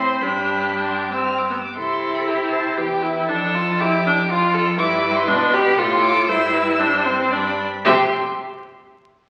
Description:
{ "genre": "quick classical-period movement for string quartet", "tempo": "118 BPM", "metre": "3/4", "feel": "uneven beats, rubato", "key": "C major", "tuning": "A4 = 440 Hz", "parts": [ { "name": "rich violin", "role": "melody", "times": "0.0-8.2 s", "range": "G5 to F6", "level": "-27 LUFS", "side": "equal", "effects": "none" }, { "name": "rich violin", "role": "second line", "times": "0.0-8.1 s", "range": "F4 to E5", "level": "-27 LUFS", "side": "equal", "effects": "none" }, { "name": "rich viola", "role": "accompaniment", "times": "0.0-8.2 s", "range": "B3 to G4", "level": "-22 LUFS", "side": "equal", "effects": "none" }, { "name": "rich cello", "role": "bass", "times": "0.0-8.2 s", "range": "E2 to C3", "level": "-28 LUFS", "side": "equal", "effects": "none" } ], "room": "wet recital hall reverb, RT60 1.4 s", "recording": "very old 78 rpm record, vinyl crackle", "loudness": "-19 LUFS", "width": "mono", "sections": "0.0-7.9 A section; 7.9-9.3 B section", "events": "none", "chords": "0.2 G; 1.8 C; 3.3 Dm/F; 4.8 G; 5.8 F/A; 6.3 C/G; 7.3 G; 7.9 C", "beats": "| 0.22 0.74 1.25 | 1.77 2.27 2.78 | 3.29 3.80 4.30 | 4.79 5.28 5.78 | 6.29 6.80 7.32 | 7.85" }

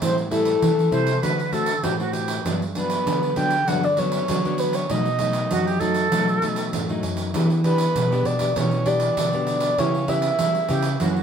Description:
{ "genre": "samba and choro", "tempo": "98 BPM", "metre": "4/4", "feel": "straight", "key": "unclear", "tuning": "A4 = 439 Hz", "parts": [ { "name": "breathy flute-like synth lead", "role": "melody", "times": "0.0-11.0 s", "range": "A4 to G5", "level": "-23 LUFS", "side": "equal", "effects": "chorus" }, { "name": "nylon-string guitar", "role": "accompaniment", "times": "0.0-11.2 s", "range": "F#2 to G4", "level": "-26 LUFS", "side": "left 2 dB", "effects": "none" }, { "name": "nylon-string guitar", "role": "bass", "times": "0.0-11.2 s", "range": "F#2 to G3", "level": "-26 LUFS", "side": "equal", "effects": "none" }, { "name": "pandeiro", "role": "percussion", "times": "0.0-11.2 s", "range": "none", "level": "-27 LUFS", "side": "right 3 dB", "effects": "none" }, { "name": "concert flute", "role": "second line", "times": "0.9-11.2 s", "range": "F#4 to C5", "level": "-25 LUFS", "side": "right 3 dB", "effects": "none" } ], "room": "moderate studio reverb, RT60 0.5 s", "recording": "band playing live in one room", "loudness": "-19 LUFS", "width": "side -7 dB against mid", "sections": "0.0-11.2 A section", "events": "none", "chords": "0.0 Am7; 1.2 D7; 2.5 Gmaj7; 4.9 B7; 7.3 Em7; 9.8 C#m7b5", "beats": "| 0.01 0.62 1.23 1.84 | 2.46 3.07 3.68 4.29 | 4.90 5.51 6.12 6.73 | 7.34 7.95 8.56 9.18 | 9.79 10.39 11.01" }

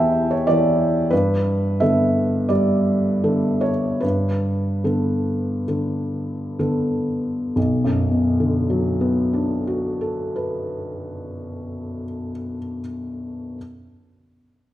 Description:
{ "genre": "neoclassical minimalist piano", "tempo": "60-96 BPM", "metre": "4/4", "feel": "rubato", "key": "B minor", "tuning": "A4 = 440 Hz", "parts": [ { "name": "felt-muted upright piano", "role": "solo", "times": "0.0-13.6 s", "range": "B1 to A5", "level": "-19 LUFS", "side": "equal", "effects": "none" } ], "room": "wet recital hall reverb, RT60 1.8 s", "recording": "recorded in a church or concert hall", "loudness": "-19 LUFS", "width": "side -13 dB against mid", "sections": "0.0-7.6 A section; 7.6-11.3 B section", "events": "slowing down 0.0-7.6", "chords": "0.0 Em7; 1.1 Gadd9; 7.6 Bm7", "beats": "0.48 | 1.12 1.81 2.50 3.23 | 4.02 4.84 5.68 6.58 | 7.56 8.51 9.45 10.39" }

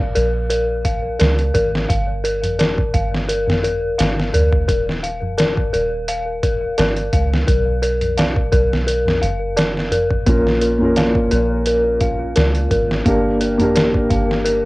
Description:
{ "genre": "trip hop", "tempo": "86 BPM", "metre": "4/4", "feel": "swing 54% on 16ths", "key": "Bb dorian", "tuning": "A4 = 440 Hz", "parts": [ { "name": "dark detuned synth bell", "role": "arpeggios", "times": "0.0-14.7 s", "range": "Bb4 to F5", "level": "-20 LUFS", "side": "left 1 dB", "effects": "chorus, cassette tape, tape echo" }, { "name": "soft 808-style bass", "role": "bass", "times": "0.0-14.7 s", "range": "Eb1 to D2", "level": "-22 LUFS", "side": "equal", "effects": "none" }, { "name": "trip hop sampler-style drum kit", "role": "drums", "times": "0.2-14.6 s", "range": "hi-hat, kick drum, snare drum", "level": "-20 LUFS", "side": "equal", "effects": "overdrive, cassette tape" }, { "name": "tabla", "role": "percussion", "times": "1.2-13.9 s", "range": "none", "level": "-27 LUFS", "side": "right 1 dB", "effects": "none" }, { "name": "felt-muted upright piano", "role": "accompaniment", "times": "10.3-14.7 s", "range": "Bb3 to Bb4", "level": "-17 LUFS", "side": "equal", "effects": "tremolo, cassette tape, tape echo" } ], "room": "light reverb", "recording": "home recording on cassette", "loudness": "-15 LUFS", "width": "side -21 dB against mid", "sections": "0.0-14.7 A section", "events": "none", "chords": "0.0 Bbm; 1.9 Gm; 4.7 Eb5; 7.5 B5; 10.3 Bbm; 13.1 Gm", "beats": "0.50 1.20 | 1.90 2.59 3.29 3.99 | 4.69 5.38 6.08 6.78 | 7.48 8.17 8.87 9.57 | 10.27 10.96 11.66 12.36 | 13.06 13.76 14.45" }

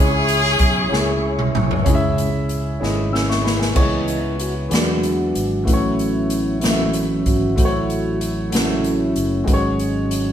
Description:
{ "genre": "slow gospel", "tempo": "63 BPM (dotted quarters)", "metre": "6/8", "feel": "straight", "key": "C# minor", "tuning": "A4 = 439 Hz", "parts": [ { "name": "clear horn section", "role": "melody", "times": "0.0-1.5 s", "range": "C#4 to G#4", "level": "-19 LUFS", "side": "left 2 dB", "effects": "none" }, { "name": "warm upright piano", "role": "accompaniment", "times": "0.0-10.3 s", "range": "G#2 to E6", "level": "-23 LUFS", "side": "left 1 dB", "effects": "none" }, { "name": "mellow tonewheel organ", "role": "sustained chords", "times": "0.0-10.3 s", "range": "E3 to C#6", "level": "-22 LUFS", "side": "right 1 dB", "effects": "fast rotary speaker" }, { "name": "fingered electric bass", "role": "bass", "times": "0.0-10.3 s", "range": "F#1 to E2", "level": "-24 LUFS", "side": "equal", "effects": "none" }, { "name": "swinging big-band drum kit", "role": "drums", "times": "0.3-10.3 s", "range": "crash cymbal, hi-hat, kick drum, snare drum, toms", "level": "-21 LUFS", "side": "equal", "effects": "none" } ], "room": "moderate studio reverb, RT60 0.8 s", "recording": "band playing live in one room", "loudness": "-16 LUFS", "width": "side -10 dB against mid", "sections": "0.0-1.9 A section; 1.9-3.8 B section; 3.8-10.3 C section", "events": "drum fill 0.9-1.9, 2.8-3.8; tonewheel organ solo 3.8-10.3", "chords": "0.0 C#m; 3.8 C#m7; 4.7 E7; 5.7 A6; 7.6 F#m7/A; 9.5 G#7sus4", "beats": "0.92 | 1.87 2.82 | 3.77 4.72 | 5.67 6.62 | 7.58 8.53 | 9.48" }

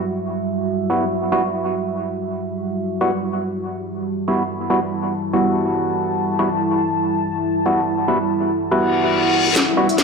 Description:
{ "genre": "deep dubstep", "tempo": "142 BPM", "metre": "4/4", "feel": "swing 57% on 16ths, half-time", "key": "E minor", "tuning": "A4 = 440 Hz", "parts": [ { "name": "deep dark ambient pad", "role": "sustained chords", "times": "0.0-10.0 s", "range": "G3 to A5", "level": "-21 LUFS", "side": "right 1 dB", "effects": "chorus, built-in reverb" }, { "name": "percussive organ stab", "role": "stabs", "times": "0.9-9.9 s", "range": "G3 to F#4", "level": "-20 LUFS", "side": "right 1 dB", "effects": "chorus, dub echo" }, { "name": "reverse cymbal and riser", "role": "sound effects", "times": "8.9-10.0 s", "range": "none", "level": "-21 LUFS", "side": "left 8 dB", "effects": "none" }, { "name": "garage drum kit", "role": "drums", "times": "9.6-10.0 s", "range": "hi-hat, snare drum", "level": "-17 LUFS", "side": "left 2 dB", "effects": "low-pass filter on snare, low-pass filter on hats, low-pass filter on room" }, { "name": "wind-like tuned noise texture", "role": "texture", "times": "9.7-10.0 s", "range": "E4 to E5", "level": "-23 LUFS", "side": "left 6 dB", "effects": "built-in reverb" } ], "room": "moderate spring reverb, RT60 1.8 s, digital ambience", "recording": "played on a big sound system in a bare room, large studio reverb", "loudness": "-18 LUFS", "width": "side -4 dB against mid", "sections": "0.0-9.6 A section", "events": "reverse cymbal 8.9-9.6; drum fill 9.6-10.0", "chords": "0.0 Emadd9", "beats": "0.26 0.69 | 1.11 1.53 1.95 2.38 | 2.80 3.22 3.64 4.07 | 4.49 4.91 5.33 5.76 | 6.18 6.60 7.03 7.45 | 7.87 8.29 8.71 9.14 | 9.56 9.98" }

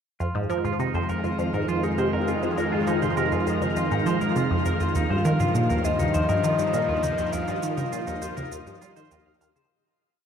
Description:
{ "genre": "ambient, sequencer-driven space music", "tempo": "101 BPM", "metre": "4/4", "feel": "straight", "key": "F minor", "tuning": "A4 = 440 Hz", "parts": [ { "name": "sweeping resonant pad", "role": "sustained chords", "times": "0.2-9.7 s", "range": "F2 to Ab3", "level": "-28 LUFS", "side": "equal", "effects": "chorus" }, { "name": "clean electric guitar", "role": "arpeggios", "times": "0.2-9.7 s", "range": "F3 to F5", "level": "-31 LUFS", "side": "right 2 dB", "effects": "auto-pan, ping-pong delay" }, { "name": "resonant blip pluck", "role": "riff", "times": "0.2-9.6 s", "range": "Eb2 to G3", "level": "-26 LUFS", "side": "equal", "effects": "phaser, ping-pong delay" }, { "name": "electronic shaker and toms", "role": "percussion", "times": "0.2-9.7 s", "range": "none", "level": "-37 LUFS", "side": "equal", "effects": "ping-pong delay" }, { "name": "wind-like tuned noise texture", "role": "texture", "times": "1.1-9.7 s", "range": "F4 to F5", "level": "-34 LUFS", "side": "right 3 dB", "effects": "built-in reverb" }, { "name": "soft octave-layered synth lead", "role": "melody", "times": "5.0-9.1 s", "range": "Eb5 to F5", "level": "-28 LUFS", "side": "left 4 dB", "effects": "chorus, tremolo, cassette tape, ping-pong delay" } ], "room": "moderate shimmer reverb, RT60 8.2 s", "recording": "none", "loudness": "-22 LUFS", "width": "side -7 dB against mid", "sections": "0.2-9.7 A section", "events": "fade-in on drum 0.2-9.7; fade-out 6.5-9.7", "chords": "0.2 Fm7; 5.0 Ebadd9", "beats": "| 0.20 0.80 1.39 1.99 | 2.58 3.17 3.77 4.36 | 4.96 5.55 6.14 6.74 | 7.33 7.92 8.52 9.11" }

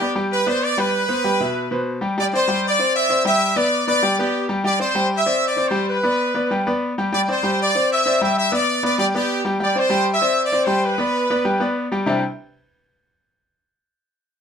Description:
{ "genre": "latin", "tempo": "194 BPM", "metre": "4/4", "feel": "straight", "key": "C major", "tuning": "A4 = 440 Hz", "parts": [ { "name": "brilliant trumpet section", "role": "melody", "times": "0.0-11.9 s", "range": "G4 to E5", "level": "-20 LUFS", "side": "right 1 dB", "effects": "slapback echo, plate reverb" }, { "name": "bright grand piano", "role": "accompaniment", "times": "0.0-12.2 s", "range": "B2 to G5", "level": "-20 LUFS", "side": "left 1 dB", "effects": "none" } ], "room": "moderate studio reverb, RT60 0.6 s", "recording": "close, detailed microphones", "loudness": "-17 LUFS", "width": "side -7 dB against mid", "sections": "0.0-2.2 A section; 2.2-12.1 B section; 12.1-13.3 C section", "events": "none", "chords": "0.0 G; 0.9 Cmaj7; 2.2 Cadd9; 3.4 G; 4.6 Cadd9; 5.9 G; 7.1 Cadd9; 8.4 G; 9.6 Cadd9; 10.8 G; 12.1 Cadd9", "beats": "0.00 0.31 0.62 | 0.93 1.24 1.55 1.86 | 2.17 2.48 2.79 3.10 | 3.41 3.72 4.03 4.34 | 4.65 4.96 5.27 5.58 | 5.89 6.20 6.51 6.82 | 7.12 7.43 7.74 8.05 | 8.36 8.67 8.98 9.29 | 9.60 9.91 10.22 10.53 | 10.84 11.14 11.45 11.76 | 12.07" }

